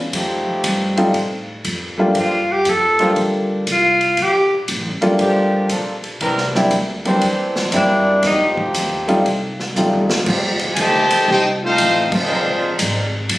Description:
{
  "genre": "jazz, big band swing",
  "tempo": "118 BPM",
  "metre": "4/4",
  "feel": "swing 67% on 8ths",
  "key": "F mixolydian, F major from 10.3 s",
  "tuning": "A4 = 439 Hz",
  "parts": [
    { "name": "upright bass", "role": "bass", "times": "0.0-13.4 s", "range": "F1 to A2", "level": "-27 LUFS", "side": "equal", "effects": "none" },
    { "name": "bright trombone section", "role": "sustained chords", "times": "0.1-13.1 s", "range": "E3 to C5", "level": "-23 LUFS", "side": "equal", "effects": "none" },
    { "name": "swinging big-band drum kit", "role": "drums", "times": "0.1-13.4 s", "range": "crash cymbal, hi-hat, kick drum, ride cymbal, snare drum, toms", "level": "-23 LUFS", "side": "equal", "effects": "none" },
    { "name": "clear grand piano", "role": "accompaniment", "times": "1.0-10.1 s", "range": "G3 to G4", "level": "-17 LUFS", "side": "equal", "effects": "none" },
    { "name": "clear tenor saxophone", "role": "melody", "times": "2.2-4.5, 7.8-8.5 s", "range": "D4 to A4", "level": "-15 LUFS", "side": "equal", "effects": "plate reverb" },
    { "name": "brilliant trumpet section", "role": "melody", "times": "10.7-12.8 s", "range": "Ab3 to A5", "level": "-16 LUFS", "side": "equal", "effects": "plate reverb" },
    { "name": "dark trombone section", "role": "second line", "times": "10.8-12.8 s", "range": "C3 to G4", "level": "-21 LUFS", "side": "equal", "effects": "none" }
  ],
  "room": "wet large studio reverb, RT60 0.9 s",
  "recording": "recorded on a phone in the room, studio reverb, compression",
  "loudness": "-15 LUFS",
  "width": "side -18 dB against mid",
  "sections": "0.0-10.3 A section; 10.3-13.4 B section",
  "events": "tenor saxophone solo 0.0-10.3; drum fill 9.8-10.3; band accent 12.0",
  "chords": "0.1 F9; 2.2 Gm7; 6.2 C9; 8.2 F9; 12.3 Bb9"
}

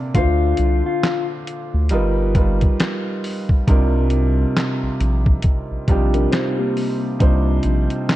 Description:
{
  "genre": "lo-fi hip hop",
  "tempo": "68 BPM",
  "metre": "4/4",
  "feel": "swing 60% on 16ths",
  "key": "C minor",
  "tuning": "A4 = 440 Hz",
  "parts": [
    { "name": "warm upright piano", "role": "accompaniment", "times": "0.0-8.2 s", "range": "C3 to E5", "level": "-22 LUFS", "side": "right 1 dB", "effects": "low-pass filter" },
    { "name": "soft dub sub bass", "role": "bass", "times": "0.1-7.9 s", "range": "G1 to D2", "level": "-18 LUFS", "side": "equal", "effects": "none" },
    { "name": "lo-fi sampler-style drum kit", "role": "drums", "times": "0.1-8.2 s", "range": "handclaps, hi-hat, kick drum, snare drum", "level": "-19 LUFS", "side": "equal", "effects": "none" },
    { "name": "mellow electric guitar", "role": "melody", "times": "0.2-1.3 s", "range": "F4", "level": "-23 LUFS", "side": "left 6 dB", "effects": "low-pass filter, tape echo" },
    { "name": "mellow tine electric piano", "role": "second line", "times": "6.1-7.9 s", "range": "Bb3 to C5", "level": "-26 LUFS", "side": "left 3 dB", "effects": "medium stereo tremolo, low-pass filter, tape echo" }
  ],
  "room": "little or no reverb",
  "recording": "dark, warm production",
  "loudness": "-16 LUFS",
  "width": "side -15 dB against mid",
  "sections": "0.0-8.2 A section",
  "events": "none",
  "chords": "0.1 Dm9; 1.9 G7alt; 3.7 Cm11"
}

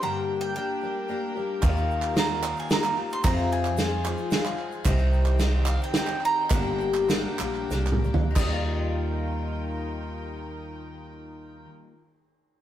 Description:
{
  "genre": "indie folk with a building arrangement",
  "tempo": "89-112 BPM",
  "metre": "3/4",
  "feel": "straight",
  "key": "Eb major",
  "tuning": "A4 = 440 Hz",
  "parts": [
    { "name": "bowl-back mandolin", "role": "melody", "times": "0.0-11.6 s", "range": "F5 to Eb6", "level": "-29 LUFS", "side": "right 4 dB", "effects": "none" },
    { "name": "picked twelve-string acoustic guitar", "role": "accompaniment", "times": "0.0-12.0 s", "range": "F2 to Ab4", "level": "-30 LUFS", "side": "left 4 dB", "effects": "none" },
    { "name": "warm chamber string section", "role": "sustained chords", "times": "0.0-11.6 s", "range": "Eb3 to Ab5", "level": "-37 LUFS", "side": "left 1 dB", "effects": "none" },
    { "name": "upright bass", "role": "bass", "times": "1.6-11.6 s", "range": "G1 to F2", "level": "-27 LUFS", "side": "right 1 dB", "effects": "none" },
    { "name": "unplugged drum kit", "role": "drums", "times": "1.6-8.5 s", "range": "crash cymbal, kick drum, ride cymbal, snare drum, toms", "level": "-27 LUFS", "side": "right 1 dB", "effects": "none" },
    { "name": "egg shaker", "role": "percussion", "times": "1.6-8.7 s", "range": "none", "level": "-48 LUFS", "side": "right 4 dB", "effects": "none" },
    { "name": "group handclap", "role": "percussion", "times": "1.6-8.7 s", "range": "none", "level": "-36 LUFS", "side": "right 4 dB", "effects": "none" }
  ],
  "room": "moderate stone room reverb, RT60 1.1 s",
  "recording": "rough rehearsal-room recording",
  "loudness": "-23 LUFS",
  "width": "side -11 dB against mid",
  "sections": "0.0-8.4 A section; 8.4-12.4 B section",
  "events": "slowing down 4.9-8.4; drum fill 7.7-8.4",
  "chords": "0.0 Gm; 1.6 Ebadd9; 3.2 Fm; 4.9 Cm; 6.5 Gm; 8.4 Ebadd9"
}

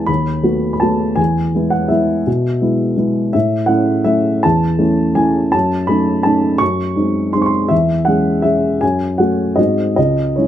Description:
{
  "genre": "classical, piano waltz",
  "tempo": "146-175 BPM",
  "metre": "3/4",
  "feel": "rubato",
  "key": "C# minor",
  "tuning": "A4 = 440 Hz",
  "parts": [
    { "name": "dark upright piano", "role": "solo", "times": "0.0-10.5 s", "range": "C#2 to C#6", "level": "-13 LUFS", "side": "equal", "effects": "none" }
  ],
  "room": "little or no reverb",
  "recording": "close, detailed microphones",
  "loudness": "-13 LUFS",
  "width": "side -11 dB against mid",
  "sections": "0.0-10.5 A section",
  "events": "none",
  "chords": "0.1 B7/D#; 1.2 E; 3.3 A; 5.5 D#m7b5/F#; 6.6 G#7/F#; 7.7 C#m/E; 8.8 F#m; 9.6 G#7; 10.0 C#m"
}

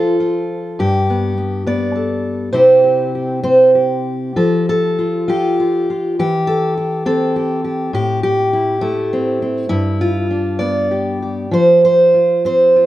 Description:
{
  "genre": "folk, solo fingerstyle acoustic guitar",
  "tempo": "67 BPM (dotted quarters)",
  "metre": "6/8",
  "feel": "uneven beats, rubato",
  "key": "C major",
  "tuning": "A4 = 436 Hz",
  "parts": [
    { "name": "fingerpicked steel-string acoustic guitar", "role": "solo", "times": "0.0-12.9 s", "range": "G2 to D5", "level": "-13 LUFS", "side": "equal", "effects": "none" }
  ],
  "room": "light reverb",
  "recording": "dark, warm production",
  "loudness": "-13 LUFS",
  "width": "side -14 dB against mid",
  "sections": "0.0-4.4 A section; 4.4-12.9 B section",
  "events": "none",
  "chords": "0.0 F; 0.8 Gadd9; 2.5 C; 4.4 Fadd9; 6.2 C/E; 7.9 Am7; 9.7 G; 11.5 F5"
}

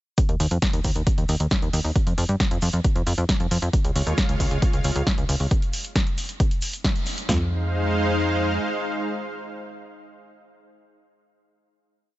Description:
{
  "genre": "uplifting trance",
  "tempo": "135 BPM",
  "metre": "4/4",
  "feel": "straight",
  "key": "F minor",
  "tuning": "A4 = 441 Hz",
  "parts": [
    { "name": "punchy analog drum machine", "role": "drums", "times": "0.2-7.4 s", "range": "kick drum, snare drum, toms", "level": "-23 LUFS", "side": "equal", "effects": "overdrive" },
    { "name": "punchy analog drum machine", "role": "drums", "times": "0.2-7.3 s", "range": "hi-hat, snare drum", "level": "-29 LUFS", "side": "equal", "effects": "overdrive, sidechain pumping on hats" },
    { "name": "cabasa", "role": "percussion", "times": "0.2-7.3 s", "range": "none", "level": "-41 LUFS", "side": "left 2 dB", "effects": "none" },
    { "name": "plucky analog bass", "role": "bass", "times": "0.3-8.6 s", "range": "Db2 to G2", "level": "-23 LUFS", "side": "equal", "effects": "tube saturation, sidechain pumping" },
    { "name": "supersaw pad", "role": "sustained chords", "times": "4.0-10.3 s", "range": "Ab3 to F5", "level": "-26 LUFS", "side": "equal", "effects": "sidechain pumping" }
  ],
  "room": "digital ambience",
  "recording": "nothing above 7.9 kHz",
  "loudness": "-20 LUFS",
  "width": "side -16 dB against mid",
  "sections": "0.2-7.3 drop; 7.3-10.8 final chord",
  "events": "drop 0.2-7.3; band accent 6.8",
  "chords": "0.2 N.C.; 3.7 Db; 5.5 N.C.; 7.3 Fm7"
}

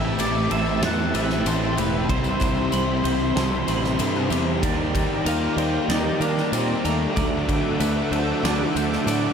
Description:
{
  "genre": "rock, shoegaze and dream pop",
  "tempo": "95 BPM",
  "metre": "4/4",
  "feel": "straight",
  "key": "unclear",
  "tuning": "A4 = 440 Hz",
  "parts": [
    { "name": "octave-fuzz lead guitar", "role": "melody", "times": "0.0-8.7 s", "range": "A3 to F#5", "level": "-30 LUFS", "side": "left 2 dB", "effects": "distortion, ping-pong delay" },
    { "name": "analog string pad", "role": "sustained chords", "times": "0.0-9.3 s", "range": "G4 to D6", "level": "-31 LUFS", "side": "equal", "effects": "ensemble chorus" },
    { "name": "twelve-string electric guitar", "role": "arpeggios", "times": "0.0-9.3 s", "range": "G4 to B5", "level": "-32 LUFS", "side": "right 6 dB", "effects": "wide subtle chorus, ping-pong delay" },
    { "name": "crunchy overdriven guitar", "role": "riff", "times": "0.0-9.3 s", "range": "A2 to G4", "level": "-28 LUFS", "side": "right 8 dB", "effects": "reverse reverb" },
    { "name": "raw garage guitar", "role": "riff", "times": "0.0-9.3 s", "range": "A2 to E4", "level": "-30 LUFS", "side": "right 1 dB", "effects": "none" },
    { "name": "thick fuzz guitar", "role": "riff", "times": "0.0-9.3 s", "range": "A2 to Eb4", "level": "-27 LUFS", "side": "left 9 dB", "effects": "distortion, analog chorus" },
    { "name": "growling fingered electric bass", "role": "bass", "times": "0.0-9.3 s", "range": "E1 to Eb3", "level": "-26 LUFS", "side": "equal", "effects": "overdrive" },
    { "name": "huge arena drum kit", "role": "drums", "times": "0.2-9.2 s", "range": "kick drum, ride cymbal, snare drum", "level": "-29 LUFS", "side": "equal", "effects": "none" },
    { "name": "tambourine", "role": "percussion", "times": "0.2-9.2 s", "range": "none", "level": "-40 LUFS", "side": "left 13 dB", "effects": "none" }
  ],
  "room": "moderate huge ambient reverb, RT60 3.9 s",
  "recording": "dreamy mix soaked in reverb",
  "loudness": "-20 LUFS",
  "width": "side -7 dB against mid",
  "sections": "0.0-4.6 A section; 4.6-9.3 B section",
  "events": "none",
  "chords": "0.0 Am7; 2.1 Cmaj7; 4.6 Ebmaj7; 7.2 Dadd9"
}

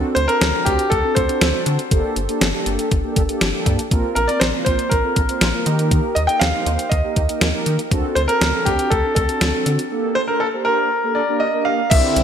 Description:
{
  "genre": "synth-pop",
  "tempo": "120 BPM",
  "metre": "4/4",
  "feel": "straight",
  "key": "unclear",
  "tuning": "A4 = 439 Hz",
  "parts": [
    { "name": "mellow synth brass", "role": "accompaniment", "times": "0.0-12.2 s", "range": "Bb3 to C5", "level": "-23 LUFS", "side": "right 1 dB", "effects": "chorus" },
    { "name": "rubbery square bass", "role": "bass", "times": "0.0-12.2 s", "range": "G1 to Eb3", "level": "-22 LUFS", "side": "equal", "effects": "none" },
    { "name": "clear grand piano", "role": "melody", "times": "0.1-12.2 s", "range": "G4 to G5", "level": "-20 LUFS", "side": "equal", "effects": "ping-pong delay" },
    { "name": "clean 12-bit digital drum machine", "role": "drums", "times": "0.2-12.2 s", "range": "crash cymbal, hi-hat, kick drum, snare drum", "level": "-20 LUFS", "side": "equal", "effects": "gated reverb" },
    { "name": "phased analog pad", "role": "sustained chords", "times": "11.9-12.2 s", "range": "D3 to E4", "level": "-21 LUFS", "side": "right 2 dB", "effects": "phaser, chorus" }
  ],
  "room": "moderate lush hall reverb, RT60 1.8 s, digital ambience",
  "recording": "bright 1980s-style digital production",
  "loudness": "-16 LUFS",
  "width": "side -8 dB against mid",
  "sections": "0.0-11.9 A section",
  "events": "none",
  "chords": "0.0 D7; 1.9 Gmadd9; 3.9 Bbsus2; 5.7 Eb; 7.9 D7; 9.9 Gmadd9"
}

